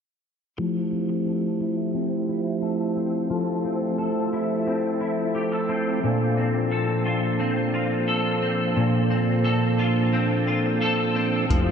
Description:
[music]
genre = dream pop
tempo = 88 BPM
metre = 4/4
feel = straight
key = F major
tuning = A4 = 440 Hz
[part]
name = mellow tonewheel organ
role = sustained chords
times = 0.6-11.7 s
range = F3 to C5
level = -24 LUFS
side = right 2 dB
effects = slow rotary speaker, low-pass filter
[part]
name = clean electric guitar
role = arpeggios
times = 0.6-11.7 s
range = Bb2 to A4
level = -24 LUFS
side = left 2 dB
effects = ensemble chorus, low-pass filter, analog delay
[part]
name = chorused synth bass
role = bass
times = 11.5-11.7 s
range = F1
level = -25 LUFS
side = equal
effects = none
[part]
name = soft vintage rhythm box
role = drums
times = 11.5-11.7 s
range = hi-hat, kick drum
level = -22 LUFS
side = equal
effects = none
[sound]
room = wet huge ambient reverb, RT60 8.6 s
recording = dreamy mix soaked in reverb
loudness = -21 LUFS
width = side -7 dB against mid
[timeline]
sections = 0.6-11.5 A section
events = filter sweep 0.6-11.5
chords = 0.6 Fmaj9; 6.0 Bbmaj9

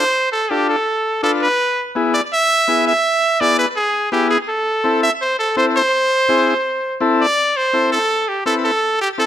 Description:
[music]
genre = latin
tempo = 166 BPM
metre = 4/4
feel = straight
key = A harmonic minor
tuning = A4 = 441 Hz
[part]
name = brilliant trumpet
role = melody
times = 0.0-9.3 s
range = G4 to E5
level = -16 LUFS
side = right 1 dB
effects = slapback echo
[part]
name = combo organ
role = accompaniment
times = 0.0-9.3 s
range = B3 to B4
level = -18 LUFS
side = left 3 dB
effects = none
[sound]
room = light reverb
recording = close, detailed microphones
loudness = -14 LUFS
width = side -10 dB against mid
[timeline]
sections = 0.0-7.4 A section; 7.4-9.3 B section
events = none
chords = 0.0 Dm; 1.6 E; 4.5 Am

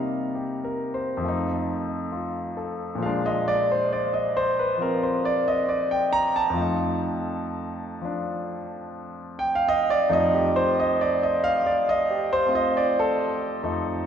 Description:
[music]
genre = solo jazz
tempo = 68 BPM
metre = 4/4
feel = swing 68% on 8ths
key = F mixolydian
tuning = A4 = 440 Hz
[part]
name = clear concert grand piano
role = solo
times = 0.0-14.1 s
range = F2 to Bb5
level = -22 LUFS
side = equal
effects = none
[sound]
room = wet church reverb, RT60 2.8 s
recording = recorded in a church or concert hall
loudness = -22 LUFS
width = side -8 dB against mid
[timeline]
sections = 0.0-14.1 A section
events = grand piano solo 0.0-14.1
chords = 0.0 Cm7; 1.2 F7; 3.0 Bb7; 6.6 F7

